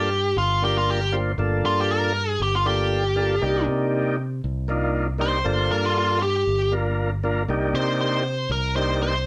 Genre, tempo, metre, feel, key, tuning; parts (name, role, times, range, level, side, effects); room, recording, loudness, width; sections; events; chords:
straight-eighth soul blues; 118 BPM; 4/4; swing 55% on 16ths; G minor; A4 = 440 Hz
biting lead guitar; melody; 0.0-9.3 s; F4 to C5; -25 LUFS; equal; overdrive
tonewheel organ; accompaniment; 0.0-9.1 s; Bb3 to C5; -27 LUFS; equal; slow rotary speaker
fingered electric bass; bass; 0.0-9.3 s; G1 to C3; -28 LUFS; equal
light reverb; band playing live in one room; -23 LUFS; mono
0.0-9.3 A section
lead electric guitar solo 0.0-9.3
0.0 Gm7; 3.4 Cm7; 5.5 Gm7; 7.5 Cm7